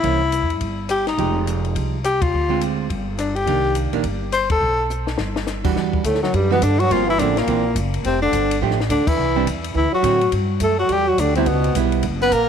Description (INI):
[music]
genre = jazz, small-group swing and bop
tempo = 210 BPM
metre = 4/4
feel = swing 62% on 8ths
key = C minor, E minor from 5.8 s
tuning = A4 = 440 Hz
[part]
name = clear tenor saxophone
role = melody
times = 0.0-12.5 s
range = F#3 to C5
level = -20 LUFS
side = left 4 dB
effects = tape echo
[part]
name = archtop guitar, miked and amplified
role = accompaniment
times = 0.0-12.0 s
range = D3 to G4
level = -24 LUFS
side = right 12 dB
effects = none
[part]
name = upright bass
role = bass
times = 0.0-12.5 s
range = F1 to A2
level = -23 LUFS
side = equal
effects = none
[part]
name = compact cocktail drum kit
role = drums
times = 0.0-12.4 s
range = crash cymbal, hi-hat, kick drum, ride cymbal, rim click, snare drum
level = -28 LUFS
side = left 3 dB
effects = none
[part]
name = clear trombone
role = second line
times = 6.1-12.5 s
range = F#2 to B3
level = -23 LUFS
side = right 10 dB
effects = none
[sound]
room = moderate echo chamber reverb, RT60 1.8 s, small room ambience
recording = 1960s-style stereo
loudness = -17 LUFS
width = side -8 dB against mid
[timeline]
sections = 0.0-5.8 A section; 5.8-12.5 B section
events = band accent 2.2, 4.5, 9.0; drum fill 4.9-5.5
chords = 0.0 C7b9; 1.2 Fm9; 2.3 Dm7b5; 2.9 G5; 3.5 Cm9; 4.6 B7(no3); 5.8 Em9; 6.9 Gm11; 7.5 F#7#11; 8.0 F69; 9.2 Cadd9; 9.8 D7; 10.3 Gmaj7(no3); 11.5 C#m7b5